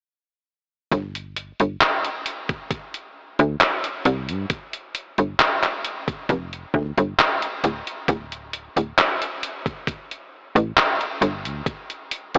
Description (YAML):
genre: vaporwave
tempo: 67 BPM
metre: 4/4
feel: straight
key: unclear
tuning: A4 = 440 Hz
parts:
  - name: slap-like FM bass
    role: bass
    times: 0.9-12.4 s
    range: D1 to G2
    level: -24 LUFS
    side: equal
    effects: none
  - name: detuned 8-bit digital drum machine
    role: drums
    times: 0.9-12.4 s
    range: handclaps, hi-hat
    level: -24 LUFS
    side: equal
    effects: gated reverb
  - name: electronic kick drum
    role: drums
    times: 0.9-11.9 s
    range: none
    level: -28 LUFS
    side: equal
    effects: none
room: moderate huge ambient reverb, RT60 5.1 s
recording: cassette tape, AM radio sound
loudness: -23 LUFS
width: mono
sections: 0.9-12.4 A section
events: none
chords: none